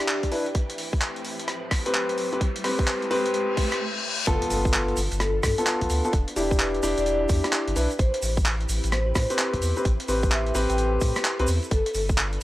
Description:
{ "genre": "UK garage, two-step garage", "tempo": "129 BPM", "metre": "4/4", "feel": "swing 64% on 16ths", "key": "A minor", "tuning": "A4 = 440 Hz", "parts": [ { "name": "soft string machine", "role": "sustained chords", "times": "0.0-12.4 s", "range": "A2 to B4", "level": "-38 LUFS", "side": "equal", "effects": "none" }, { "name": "warm concert grand piano", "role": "stabs", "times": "0.0-11.5 s", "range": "B3 to B4", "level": "-26 LUFS", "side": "left 1 dB", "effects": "analog delay" }, { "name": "breakbeat sampler-style drum kit", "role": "drums", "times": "0.0-12.4 s", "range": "handclaps, hi-hat, rim click", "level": "-28 LUFS", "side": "equal", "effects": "overdrive, high-pass filter on hats, high-pass filter on snare, high-pass filter on room" }, { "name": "riser, reverse cymbal and impact", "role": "sound effects", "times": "1.4-6.1 s", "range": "none", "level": "-33 LUFS", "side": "left 2 dB", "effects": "none" }, { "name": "electronic kick drum", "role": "drums", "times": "0.2-12.2 s", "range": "none", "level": "-24 LUFS", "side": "equal", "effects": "none" }, { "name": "vibraphone with soft mallets", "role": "melody", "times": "4.3-12.0 s", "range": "A4 to G5", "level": "-31 LUFS", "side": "left 1 dB", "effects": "analog delay" }, { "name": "saturated sub bass", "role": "bass", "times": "4.3-12.4 s", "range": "E1 to A2", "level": "-27 LUFS", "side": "equal", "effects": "none" }, { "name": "tube shaker", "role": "percussion", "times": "4.3-12.3 s", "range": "none", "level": "-38 LUFS", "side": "right 3 dB", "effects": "none" } ], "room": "light reverb, digital ambience", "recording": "dry, gritty hardware recording", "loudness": "-22 LUFS", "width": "side -16 dB against mid", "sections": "0.0-4.3 A section; 4.3-12.4 B section", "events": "build-up 0.0-4.3; filter sweep on grand piano 0.0-4.3; riser 1.4-3.8; reverse cymbal 3.3-4.3; stop 3.8-4.3; drop 4.3-12.4; impact 4.3-6.1", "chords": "0.0 Em7; 0.6 Am9; 4.3 G9; 6.1 Em7; 8.0 Am9; 11.7 G9", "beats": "0.09 | 0.55 1.01 1.48 1.95 | 2.41 2.88 3.34 3.81 | 4.27 4.74 5.20 5.67 | 6.13 6.60 7.06 7.53 | 7.99 8.46 8.92 9.39 | 9.85 10.32 10.78 11.25 | 11.71 12.18" }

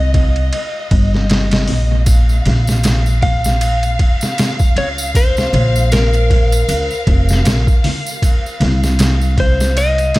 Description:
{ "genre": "trip hop", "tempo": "78 BPM", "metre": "4/4", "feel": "swing 57% on 16ths", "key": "Bb dorian", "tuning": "A4 = 440 Hz", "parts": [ { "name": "electric slide guitar", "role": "melody", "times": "0.0-10.2 s", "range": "Bb4 to F5", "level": "-21 LUFS", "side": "left 1 dB", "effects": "dub echo" }, { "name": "warm studio violin section", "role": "sustained chords", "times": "0.0-10.2 s", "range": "Eb5 to F5", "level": "-25 LUFS", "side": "left 1 dB", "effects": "vintage 12-bit sampler grit" }, { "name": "upright bass", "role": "bass", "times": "0.0-10.1 s", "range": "F1 to Db2", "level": "-15 LUFS", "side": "equal", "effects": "tube saturation" }, { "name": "trip hop sampler-style drum kit", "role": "drums", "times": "0.1-10.2 s", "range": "hi-hat, kick drum, ride cymbal, snare drum", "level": "-16 LUFS", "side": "equal", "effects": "analog delay" }, { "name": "tambourine and congas", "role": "percussion", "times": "2.1-10.1 s", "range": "none", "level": "-24 LUFS", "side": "equal", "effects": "none" } ], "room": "small room reverb", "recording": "echo-heavy mix", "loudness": "-12 LUFS", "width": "side -19 dB against mid", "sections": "0.0-10.2 A section", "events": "none", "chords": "0.0 Cm7; 2.1 Bbm; 8.2 Cm", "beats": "0.53 1.30 | 2.06 2.83 3.60 4.37 | 5.14 5.91 6.68 7.45 | 8.22 8.99 9.76" }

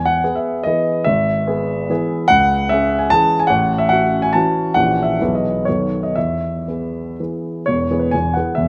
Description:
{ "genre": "classical, romantic triple-time dance for piano with dotted rhythms", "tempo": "110-158 BPM", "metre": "3/4", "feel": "rubato", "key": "E major", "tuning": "A4 = 443 Hz", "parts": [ { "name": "warm baby grand piano", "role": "solo", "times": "0.0-8.7 s", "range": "E1 to A5", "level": "-18 LUFS", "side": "equal", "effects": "none" } ], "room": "moderate concert hall reverb, RT60 2.4 s", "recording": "close, detailed microphones", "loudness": "-18 LUFS", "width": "mono", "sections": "0.0-7.7 A section; 7.7-8.7 B section", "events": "none", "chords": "0.0 E; 1.1 E/G#; 2.3 C#m; 3.5 F#m7/A; 4.8 A#dim7; 5.2 E/B; 5.7 B7; 6.2 E", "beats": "0.22 0.65 | 1.06 1.47 1.90 | 2.30 2.69 3.10 | 3.50 3.92 4.35 | 4.76 5.20 5.67 | 6.16 6.68 7.19 | 7.67 8.13 8.58" }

